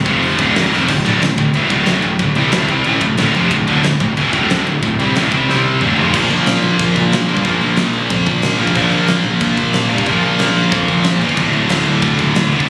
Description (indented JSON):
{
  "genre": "heavy metal",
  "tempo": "183 BPM",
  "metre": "4/4",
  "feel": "straight",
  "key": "D minor",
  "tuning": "A4 = 440 Hz",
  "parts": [
    { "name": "scooped high-gain guitar", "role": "riff", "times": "0.0-12.7 s", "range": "D2 to C4", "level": "-17 LUFS", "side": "equal", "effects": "distortion" },
    { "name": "fuzz picked electric bass", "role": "bass", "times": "0.0-12.7 s", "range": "D1 to G2", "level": "-20 LUFS", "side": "equal", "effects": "overdrive" },
    { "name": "big rock drum kit", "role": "drums", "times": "0.1-12.7 s", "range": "crash cymbal, hi-hat, kick drum, ride cymbal, snare drum, toms", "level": "-22 LUFS", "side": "equal", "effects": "none" }
  ],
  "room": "little or no reverb",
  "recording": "recorded on a phone in the room, club reverb",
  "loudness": "-15 LUFS",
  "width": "mono",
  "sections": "0.9-6.1 A section; 6.1-12.7 B section",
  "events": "drum fill 0.7, 5.5-6.1",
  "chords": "0.1 F5; 0.4 Dm; 0.9 D5; 5.5 C5; 5.8 Dm; 6.1 Bb5; 11.4 D5",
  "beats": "0.22 0.55 | 0.88 1.21 1.54 1.87 | 2.20 2.53 2.85 3.18 | 3.51 3.84 4.17 4.50 | 4.83 5.16 5.48 5.81 | 6.14 6.47 6.80 7.12 | 7.45 7.78 8.11 8.44 | 8.76 9.09 9.42 9.75 | 10.07 10.40 10.73 11.05 | 11.38 11.71 12.03 12.36 | 12.69"
}